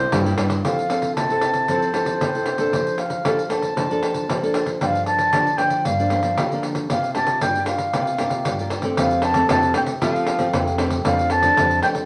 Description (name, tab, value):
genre	samba and choro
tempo	115 BPM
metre	4/4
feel	straight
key	F major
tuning	A4 = 440 Hz
part	mellow clarinet	second line	0.0-4.5 s	C5 to A5	-29 LUFS	equal	none
part	nylon-string guitar	accompaniment	0.0-12.1 s	F2 to A4	-27 LUFS	equal	none
part	growling fingered electric bass	bass	0.0-0.6, 9.0-11.8 s	F2 to F3	-26 LUFS	equal	overdrive
part	pandeiro	percussion	0.1-12.1 s	none	-27 LUFS	equal	none
part	wooden flute	melody	0.6-11.9 s	F5 to A5	-23 LUFS	equal	none
room	wet studio reverb, RT60 0.7 s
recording	none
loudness	-21 LUFS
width	mono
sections	0.6-9.0 A section; 9.0-12.1 B section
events	none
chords	0.0 C7; 0.6 Fmaj7; 2.7 Bbmaj7/F; 4.8 Gm7; 6.9 C7sus4; 9.0 Fadd9; 11.1 Dm/F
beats	0.13 | 0.65 1.17 1.69 2.21 | 2.73 3.25 3.77 4.29 | 4.81 5.33 5.86 6.38 | 6.90 7.42 7.94 8.46 | 8.98 9.50 10.02 10.54 | 11.06 11.58